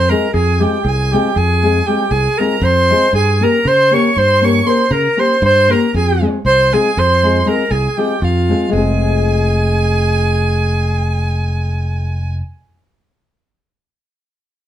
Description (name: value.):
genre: balkan folk.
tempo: 236 BPM (eighths).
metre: 11/8.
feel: straight.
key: F minor.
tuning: A4 = 443 Hz.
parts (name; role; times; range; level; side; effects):
mellow clarinet; melody; 0.0-12.3 s; F4 to Db5; -16 LUFS; right 1 dB; none.
rich violin; second line; 0.0-12.3 s; F5 to Db6; -20 LUFS; right 2 dB; none.
fingered electric bass; bass; 0.0-12.4 s; F1 to Db3; -16 LUFS; equal; none.
nylon-string guitar; accompaniment; 0.1-12.5 s; Ab3 to Bb4; -18 LUFS; left 3 dB; none.
room: wet studio reverb, RT60 0.5 s.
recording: band playing live in one room.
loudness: -12 LUFS.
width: side -11 dB against mid.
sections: 0.0-8.7 A section; 8.7-11.6 B section.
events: none.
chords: 0.0 Fm; 3.1 Gdim; 5.9 Fm.